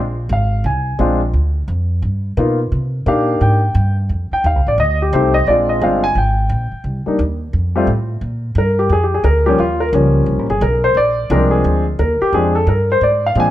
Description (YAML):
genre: jazz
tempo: 175 BPM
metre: 4/4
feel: swing 64% on 8ths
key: Bb mixolydian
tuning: A4 = 439 Hz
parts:
  - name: upright bass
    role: bass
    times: 0.0-13.5 s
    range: G1 to C3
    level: -17 LUFS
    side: equal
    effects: none
  - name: warm grand piano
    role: melody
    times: 0.3-13.5 s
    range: F3 to Ab5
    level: -15 LUFS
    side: left 1 dB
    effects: plate reverb
room: light reverb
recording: none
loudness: -13 LUFS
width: side -13 dB against mid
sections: 0.0-8.2 A section; 8.2-13.5 B section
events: grand piano solo 8.2-13.5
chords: 0.0 Bb7(no3); 1.3 Dm; 2.0 G7alt; 2.7 Cm7; 4.1 F7(no3); 5.5 Bb7; 6.8 Cm; 7.5 F; 8.2 Bb; 9.6 Eb7; 11.0 Bb7